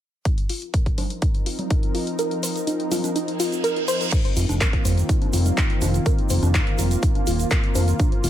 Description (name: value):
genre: progressive house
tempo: 124 BPM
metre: 4/4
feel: straight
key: unclear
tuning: A4 = 439 Hz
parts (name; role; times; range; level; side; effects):
- lush unison pad; sustained chords; 1.0-8.3 s; D3 to Bb4; -27 LUFS; left 1 dB; chorus, sidechain pumping
- soft round pluck; arpeggios; 0.3-8.3 s; D4 to C5; -28 LUFS; equal; wide subtle chorus, cassette tape, sidechain pumping, ping-pong delay
- big-room dance drum kit; drums; 0.3-8.3 s; crash cymbal, handclaps, hi-hat; -29 LUFS; left 1 dB; sidechain pumping on hats, sidechain pumping on cymbals
- electronic kick drum; drums; 0.3-8.1 s; none; -21 LUFS; equal; none
- congas; percussion; 1.0-7.9 s; none; -32 LUFS; right 1 dB; sidechain pumping on perc
- egg shaker; percussion; 2.2-8.3 s; none; -33 LUFS; right 6 dB; none
- reverse cymbal; sound effects; 3.4-4.1 s; none; -29 LUFS; right 6 dB; none
- fat analog bass; bass; 4.4-8.3 s; Eb1 to F1; -20 LUFS; equal; sidechain pumping
room: little or no reverb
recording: none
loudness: -19 LUFS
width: side -12 dB against mid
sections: 0.3-4.1 A section; 4.1-8.3 B section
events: filter sweep on synth pluck 0.3-4.1, 4.1-8.3; filter sweep on analog synth pad 0.3-4.1; kick drops out 2.2-4.1; reverse cymbal 3.4-4.1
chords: 0.3 F7sus4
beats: | 0.25 0.74 1.22 1.71 | 2.19 2.67 3.16 3.64 | 4.12 4.61 5.09 5.58 | 6.06 6.54 7.03 7.51 | 8.00